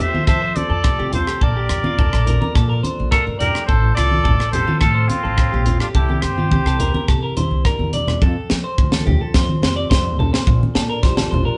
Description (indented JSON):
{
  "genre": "highlife guitar band",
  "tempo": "106 BPM",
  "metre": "4/4",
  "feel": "straight",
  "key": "F major",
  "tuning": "A4 = 441 Hz",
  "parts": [
    { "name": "trumpet with straight mute", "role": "melody", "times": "0.0-7.1 s", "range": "F4 to E5", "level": "-24 LUFS", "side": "equal", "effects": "none" },
    { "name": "clear trumpet", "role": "second line", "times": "0.0-7.1 s", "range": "C4 to C5", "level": "-32 LUFS", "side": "equal", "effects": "none" },
    { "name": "fingerpicked steel-string acoustic guitar", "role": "accompaniment", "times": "0.0-11.6 s", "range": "F2 to C5", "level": "-31 LUFS", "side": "equal", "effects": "none" },
    { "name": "clean electric guitar", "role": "arpeggios", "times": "0.0-11.6 s", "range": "F4 to D5", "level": "-28 LUFS", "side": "equal", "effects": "slapback echo" },
    { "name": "upright bass", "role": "bass", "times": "0.0-11.4 s", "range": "A1 to F3", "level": "-23 LUFS", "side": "equal", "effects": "none" },
    { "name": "congas", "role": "percussion", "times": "0.0-11.5 s", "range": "none", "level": "-25 LUFS", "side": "equal", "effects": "none" },
    { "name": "tight funk drum kit", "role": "drums", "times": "0.3-11.3 s", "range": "hi-hat, kick drum, rim click, snare drum", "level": "-21 LUFS", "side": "equal", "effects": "none" }
  ],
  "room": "moderate studio reverb, RT60 0.8 s",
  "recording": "band playing live in one room, nothing above 10.5 kHz",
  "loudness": "-18 LUFS",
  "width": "mono",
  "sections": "0.0-8.2 A section; 8.2-11.6 B section",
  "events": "drum fill 7.8-8.2",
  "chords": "0.0 F; 1.4 Bbmaj7; 3.7 F/A; 6.0 C7; 8.2 F; 10.5 Bbmaj7"
}